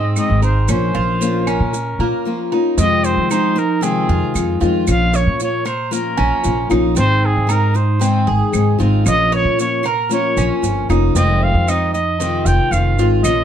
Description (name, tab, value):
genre	latin, Cuban son and guajira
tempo	115 BPM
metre	4/4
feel	straight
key	F minor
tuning	A4 = 440 Hz
part	breathy trumpet	melody	0.0-13.4 s	Ab4 to G5	-20 LUFS	right 1 dB	plate reverb
part	picked steel-string acoustic guitar	accompaniment	0.0-13.4 s	C3 to Ab4	-20 LUFS	left 5 dB	none
part	Cuban tres	arpeggios	0.0-13.4 s	Bb3 to Db5	-23 LUFS	right 5 dB	none
part	upright bass	bass	0.0-13.4 s	F1 to F3	-18 LUFS	equal	none
part	claves	percussion	0.2-13.4 s	none	-32 LUFS	right 1 dB	none
part	maracas	percussion	0.2-13.4 s	none	-29 LUFS	right 8 dB	none
room	moderate studio reverb, RT60 0.5 s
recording	dark, warm production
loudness	-14 LUFS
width	side -9 dB against mid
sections	0.0-2.8 A section; 2.8-13.4 B section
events	none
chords	0.0 Ab; 0.7 Bbm; 2.8 Fm7; 4.9 Bbm; 7.0 Ab; 9.1 Bbm; 11.2 Fm7